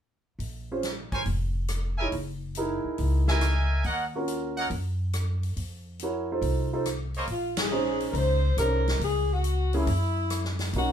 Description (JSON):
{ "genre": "jazz, big band swing", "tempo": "139 BPM", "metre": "4/4", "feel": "swing 68% on 8ths", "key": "Bb minor", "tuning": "A4 = 440 Hz", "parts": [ { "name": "upright bass", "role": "bass", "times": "0.4-10.9 s", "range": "F1 to Gb2", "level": "-28 LUFS", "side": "equal", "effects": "none" }, { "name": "swinging big-band drum kit", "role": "drums", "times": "0.4-10.9 s", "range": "hi-hat, kick drum, ride cymbal, rim click, snare drum", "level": "-36 LUFS", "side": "left 1 dB", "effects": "none" }, { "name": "clear concert grand piano", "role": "accompaniment", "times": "0.7-10.9 s", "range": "Bb3 to Db5", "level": "-30 LUFS", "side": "right 3 dB", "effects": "none" }, { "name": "bright trumpet section", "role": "stabs", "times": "1.1-7.3 s", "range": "Bb3 to Ab5", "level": "-29 LUFS", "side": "right 2 dB", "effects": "none" }, { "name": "dark saxophone section", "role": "melody", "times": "7.3-10.9 s", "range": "Fb4 to C5", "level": "-29 LUFS", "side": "left 1 dB", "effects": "none" } ], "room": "moderate studio ambience, RT60 0.5 s", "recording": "band playing live in one room", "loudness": "-25 LUFS", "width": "side -9 dB against mid", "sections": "0.4-7.3 A section; 7.3-10.9 B section", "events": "band accent 7.5", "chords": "0.4 Bbm9; 2.1 Gb13; 3.8 Ebm7; 5.6 F7; 7.3 Bbm11; 9.0 Dbm; 9.9 Esus2/F#" }